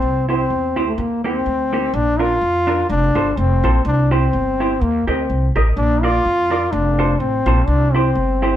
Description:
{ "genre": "ska", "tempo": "125 BPM", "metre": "4/4", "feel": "swing 54% on 8ths", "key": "Bb major", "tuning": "A4 = 440 Hz", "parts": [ { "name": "warm trombone", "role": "melody", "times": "0.0-8.6 s", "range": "A3 to F4", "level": "-19 LUFS", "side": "left 1 dB", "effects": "none" }, { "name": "upright bass", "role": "bass", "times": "0.0-8.6 s", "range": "F1 to F2", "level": "-19 LUFS", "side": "equal", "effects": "none" }, { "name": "clean electric guitar", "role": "accompaniment", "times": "0.3-8.5 s", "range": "Bb3 to Eb5", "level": "-23 LUFS", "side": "right 4 dB", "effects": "none" } ], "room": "moderate stone room reverb, RT60 1.0 s", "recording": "band playing live in one room", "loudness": "-15 LUFS", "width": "side -11 dB against mid", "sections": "0.0-1.9 A section; 1.9-8.6 B section", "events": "none", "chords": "0.0 C; 1.0 Eb; 1.9 Bb; 2.9 F; 3.9 C; 4.8 Eb; 5.8 Bb; 6.7 F; 7.7 C" }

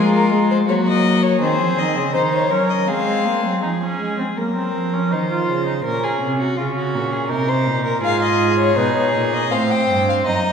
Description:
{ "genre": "classical, baroque-style fugue for string quartet", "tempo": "81 BPM", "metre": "3/4", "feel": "straight", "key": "unclear", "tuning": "A4 = 439 Hz", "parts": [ { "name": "dark violin", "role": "melody", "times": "0.0-3.6, 8.0-10.5 s", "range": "G#4 to Bb5", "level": "-20 LUFS", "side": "left 6 dB", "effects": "none" }, { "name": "rich violin", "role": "second line", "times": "0.0-10.5 s", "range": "E#4 to Eb5", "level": "-23 LUFS", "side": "left 1 dB", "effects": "none" }, { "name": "rich viola", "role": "accompaniment", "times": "0.0-10.5 s", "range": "G#3 to F4", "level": "-22 LUFS", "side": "right 1 dB", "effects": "none" }, { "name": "warm cello", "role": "bass", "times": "0.0-10.5 s", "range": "Gb2 to A#3", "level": "-21 LUFS", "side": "right 1 dB", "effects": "none" } ], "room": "wet concert hall reverb, RT60 1.8 s", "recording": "heard from further back in the room", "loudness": "-16 LUFS", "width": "side -6 dB against mid", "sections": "0.0-3.6 A section; 3.6-10.5 B section", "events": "none", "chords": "0.0 C# (rootless); 0.7 D#m7/F#; 1.4 G#; 2.9 F#maj9#11; 3.6 C#/E#; 5.1 C#maj9; 5.9 A#m; 7.3 A#sus24; 8.0 Fm7b5/Ab; 9.5 F/A" }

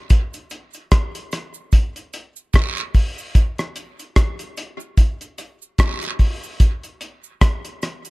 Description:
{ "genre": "reggae", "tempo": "74 BPM", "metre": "4/4", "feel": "swing 58% on 16ths", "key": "none", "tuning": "none", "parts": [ { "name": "cloth-damped thuddy drum kit", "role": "drums", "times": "0.1-8.1 s", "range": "hi-hat, kick drum, rim click", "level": "-16 LUFS", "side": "equal", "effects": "none" }, { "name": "cabasa and guiro", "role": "percussion", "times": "0.1-8.1 s", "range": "none", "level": "-32 LUFS", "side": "right 6 dB", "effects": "tape echo" } ], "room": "little or no reverb", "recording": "dark, warm production", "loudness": "-17 LUFS", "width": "side -23 dB against mid", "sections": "0.0-8.1 A section", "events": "none", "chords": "none" }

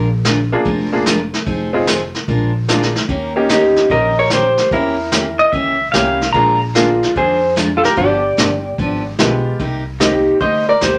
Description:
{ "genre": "country, western swing", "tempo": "148 BPM", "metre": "4/4", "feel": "swing 67% on 8ths", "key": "Bb mixolydian", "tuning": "A4 = 440 Hz", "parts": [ { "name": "picked steel-string acoustic guitar", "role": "accompaniment", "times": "0.0-10.9 s", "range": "C3 to Bb4", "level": "-24 LUFS", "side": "equal", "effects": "none" }, { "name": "upright bass", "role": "bass", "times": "0.0-11.0 s", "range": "F1 to F2", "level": "-25 LUFS", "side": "equal", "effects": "none" }, { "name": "vintage brush drum kit", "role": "drums", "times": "0.2-11.0 s", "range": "brushed snare drum, hi-hat, kick drum, snare drum", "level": "-22 LUFS", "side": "equal", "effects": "none" }, { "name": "bright upright piano", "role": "accompaniment", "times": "0.5-10.6 s", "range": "Ab3 to Ab4", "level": "-21 LUFS", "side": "equal", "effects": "none" }, { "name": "clean lap steel guitar", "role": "melody", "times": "3.5-11.0 s", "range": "F4 to Eb5", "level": "-18 LUFS", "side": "equal", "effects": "none" }, { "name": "hollow-body jazz guitar", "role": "second line", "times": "3.5-11.0 s", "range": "Bb3 to C5", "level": "-22 LUFS", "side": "equal", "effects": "none" }, { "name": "pedal steel guitar", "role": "second line", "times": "5.4-6.6 s", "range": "Eb5 to Bb5", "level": "-16 LUFS", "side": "equal", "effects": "none" } ], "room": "wet studio reverb, RT60 0.5 s", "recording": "none", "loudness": "-15 LUFS", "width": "mono", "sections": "0.0-11.0 A section", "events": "none", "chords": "0.0 Bb7; 1.5 Fm7; 2.3 Bb7; 3.1 Eb7; 4.7 Edim7; 6.3 Bb7; 8.0 G7b9; 9.6 Cm7" }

